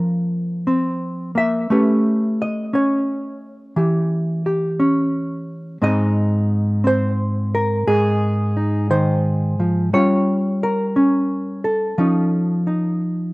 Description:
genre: solo jazz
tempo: 58 BPM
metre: 4/4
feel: swing 67% on 8ths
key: unclear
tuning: A4 = 439 Hz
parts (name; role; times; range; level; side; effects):
- hollow-body jazz guitar; solo; 0.0-13.3 s; Ab2 to F5; -17 LUFS; equal; none
room: light reverb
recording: recorded outdoors, with no room sound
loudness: -17 LUFS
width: side -22 dB against mid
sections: 0.0-13.3 A section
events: none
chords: 0.0 Bbmadd9; 1.7 A9; 5.8 Ab; 9.9 Gm7b5; 12.0 Faug7

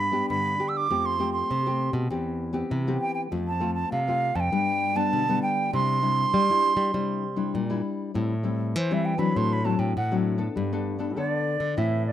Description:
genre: samba and choro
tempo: 99 BPM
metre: 4/4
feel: straight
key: C major, A minor from 8.2 s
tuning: A4 = 443 Hz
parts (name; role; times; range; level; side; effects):
- wooden flute; melody; 0.0-12.1 s; C5 to E6; -25 LUFS; right 3 dB; slapback echo
- nylon-string guitar; accompaniment; 0.0-12.1 s; G2 to A4; -28 LUFS; left 4 dB; plate reverb
- nylon-string guitar; bass; 0.0-12.1 s; E2 to G3; -29 LUFS; equal; none
room: moderate small room reverb, RT60 0.5 s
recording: rough home demo mix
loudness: -23 LUFS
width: side -11 dB against mid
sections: 0.0-8.2 A section; 8.2-12.1 B section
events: flute solo 8.2-12.1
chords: 0.0 G; 0.9 Fadd9; 2.1 Cmaj7/E; 3.3 F; 4.5 G; 5.7 Cadd9; 8.2 Am7; 9.4 D7/A; 10.6 Gadd9

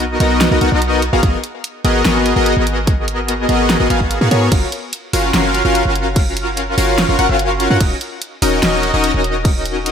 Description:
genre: future bass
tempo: 146 BPM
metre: 4/4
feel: half-time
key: unclear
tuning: A4 = 440 Hz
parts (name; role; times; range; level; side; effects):
- big bright polysynth; riff; 0.0-9.9 s; B3 to F#5; -15 LUFS; left 1 dB; chorus, sidechain pumping, ping-pong delay
- warm 808-style bass; bass; 0.0-9.9 s; Eb1 to Ab2; -19 LUFS; equal; sidechain pumping
- pop drum kit; drums; 0.0-9.9 s; crash cymbal, hi-hat, snare drum; -20 LUFS; right 1 dB; none
- electronic kick drum; drums; 1.2-9.5 s; none; -16 LUFS; equal; none
room: moderate plate reverb, RT60 1.1 s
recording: dreamy mix soaked in reverb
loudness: -13 LUFS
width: side -7 dB against mid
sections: 0.0-9.9 A section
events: none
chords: 0.0 Bmaj7; 1.0 Abm9; 4.5 Gbmaj7; 7.8 Ebm7

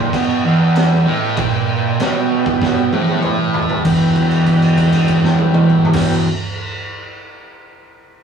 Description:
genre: garage rock duo or trio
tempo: 97 BPM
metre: 4/4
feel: straight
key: E minor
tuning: A4 = 440 Hz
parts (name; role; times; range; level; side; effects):
- overdriven combo organ; sustained chords; 0.0-6.2 s; B4 to A5; -26 LUFS; left 2 dB; none
- fuzz guitar; riff; 0.0-6.2 s; E2 to E3; -14 LUFS; right 1 dB; distortion
- raw garage drum kit; drums; 0.1-6.1 s; crash cymbal, kick drum, snare drum, toms; -20 LUFS; right 1 dB; none
room: moderate studio reverb, RT60 0.5 s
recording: rough rehearsal-room recording, studio reverb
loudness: -13 LUFS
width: side -7 dB against mid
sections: 0.0-3.8 A section; 3.8-6.3 B section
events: drum fill 2.6-3.8; transistor combo organ fill 2.6-3.8; held note 3.8-5.9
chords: 0.0 Em

